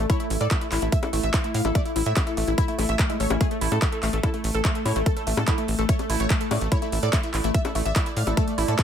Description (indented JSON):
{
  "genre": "psychedelic trance",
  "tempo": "145 BPM",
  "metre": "4/4",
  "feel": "straight",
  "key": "unclear",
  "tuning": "A4 = 440 Hz",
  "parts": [
    { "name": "supersaw stab", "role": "melody", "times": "0.0-8.8 s", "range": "A3 to F5", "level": "-30 LUFS", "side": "equal", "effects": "phaser, sidechain pumping, digital delay" },
    { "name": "evolving wavetable pad", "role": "sustained chords", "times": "0.0-8.8 s", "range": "A3 to D5", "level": "-31 LUFS", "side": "left 1 dB", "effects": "chorus, built-in reverb, sidechain pumping" },
    { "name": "tight sequencer bass", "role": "bass", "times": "0.0-8.8 s", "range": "A1 to A2", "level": "-26 LUFS", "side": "equal", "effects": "tube saturation" },
    { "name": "woody wave-folded pluck", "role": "riff", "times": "0.1-8.7 s", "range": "G#3 to Bb4", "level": "-30 LUFS", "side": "moving between left 5 dB and right 5 dB", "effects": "chorus, auto-pan, sidechain pumping, digital delay" },
    { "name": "big-room dance drum kit", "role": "drums", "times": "0.1-8.8 s", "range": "bongos, handclaps, hi-hat", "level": "-30 LUFS", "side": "left 1 dB", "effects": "overdrive" },
    { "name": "electronic kick drum", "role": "drums", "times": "0.1-8.8 s", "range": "none", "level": "-23 LUFS", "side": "equal", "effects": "overdrive" }
  ],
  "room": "digital ambience",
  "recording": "none",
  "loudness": "-21 LUFS",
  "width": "side -8 dB against mid",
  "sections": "0.0-8.8 A section",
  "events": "none",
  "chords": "0.0 A5"
}